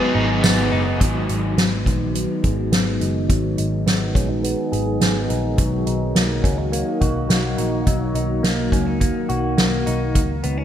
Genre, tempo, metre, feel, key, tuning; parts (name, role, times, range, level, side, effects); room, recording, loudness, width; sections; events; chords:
dream pop; 105 BPM; 4/4; straight; G# minor; A4 = 443 Hz
warbly nostalgic lead; melody; 0.0-0.5 s; barely audible
overdriven electric guitar; accompaniment; 0.0-1.5 s; G#2 to G#4; -26 LUFS; right 3 dB; tremolo, ensemble chorus
warbly tape-like pad; sustained chords; 0.0-10.6 s; B2 to G#4; -25 LUFS; equal; chorus, built-in reverb, low-pass filter
direct-recorded clean electric guitar; arpeggios; 0.0-10.6 s; F#3 to G#4; -25 LUFS; left 1 dB; lush chorus, low-pass filter, digital delay
vintage muted picked electric bass; bass; 0.2-10.6 s; F#1 to C#2; -24 LUFS; equal
soft-mallet drum kit; drums; 0.2-10.6 s; hi-hat, kick drum, ride cymbal, snare drum, tambourine; -20 LUFS; equal; gated reverb
moderate lush hall reverb, RT60 2.6 s; bright 1980s-style digital production; -17 LUFS; side -10 dB against mid
0.0-1.0 A section; 1.0-10.6 B section
0.0 G#m7; 5.6 Bmaj7